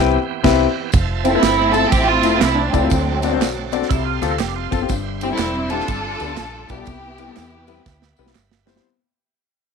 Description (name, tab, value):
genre	uptempo gospel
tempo	121 BPM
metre	4/4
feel	swing 64% on 8ths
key	C major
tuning	A4 = 438 Hz
part	warm concert grand piano	accompaniment	0.0-8.9 s	G2 to G5	-21 LUFS	left 12 dB	none
part	overdriven tonewheel organ	sustained chords	0.0-8.8 s	E3 to C6	-30 LUFS	right 15 dB	slow rotary speaker
part	deep dub fingered electric bass	bass	0.0-8.8 s	E1 to E2	-24 LUFS	right 1 dB	tube saturation
part	modern studio drum kit	drums	0.4-8.8 s	crash cymbal, kick drum, ride cymbal, snare drum	-21 LUFS	right 4 dB	none
part	tambourine and handclaps	percussion	0.9-8.8 s	none	-32 LUFS	right 3 dB	none
part	warm studio string section	melody	1.2-8.3 s	F#3 to A4	-19 LUFS	right 3 dB	tape echo
part	clean electric guitar	second line	3.9-4.9 s	E4 to A4	-27 LUFS	right 17 dB	analog chorus
room	moderate spring reverb, RT60 1.0 s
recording	1960s-style stereo with parts hard left and right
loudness	-16 LUFS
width	side -6 dB against mid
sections	0.9-8.8 A section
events	band accent 0.0-0.9; fade-out 0.9-8.8; drum fill 7.9-8.8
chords	0.0 Cmaj7; 0.9 Fmaj7; 2.9 D7; 3.9 F/C; 4.9 C/G; 5.9 G7; 6.9 Cmaj7